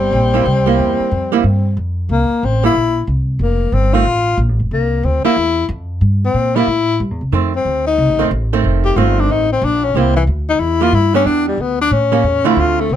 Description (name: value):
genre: jazz, small-group swing and bop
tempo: 183 BPM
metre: 4/4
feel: swing 64% on 8ths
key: C mixolydian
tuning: A4 = 442 Hz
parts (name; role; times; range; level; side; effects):
- breathy tenor saxophone; melody; 0.0-13.0 s; E3 to G4; -16 LUFS; left 4 dB; none
- clear alto saxophone; second line; 0.0-1.8 s; G3; -23 LUFS; right 3 dB; none
- upright bass; bass; 0.0-13.0 s; F1 to Bb2; -16 LUFS; equal; none
- archtop guitar, miked and amplified; accompaniment; 0.3-12.9 s; D3 to G4; -17 LUFS; right 10 dB; none
room: light reverb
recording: dark, warm production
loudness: -13 LUFS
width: side -10 dB against mid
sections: 0.0-2.1 A section; 2.1-13.0 B section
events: tenor saxophone solo 2.1-13.0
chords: 0.0 C7; 3.4 F; 4.7 C7; 7.3 F7; 9.9 C7; 11.3 Em7; 11.9 A7b9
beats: 0.13 0.45 | 0.78 1.11 1.44 1.76 | 2.09 2.42 2.74 3.07 | 3.40 3.73 4.05 4.38 | 4.71 5.03 5.36 5.69 | 6.02 6.34 6.67 7.00 | 7.33 7.65 7.98 8.31 | 8.64 8.96 9.29 9.62 | 9.95 10.27 10.60 10.93 | 11.26 11.59 11.91 12.24 | 12.57 12.90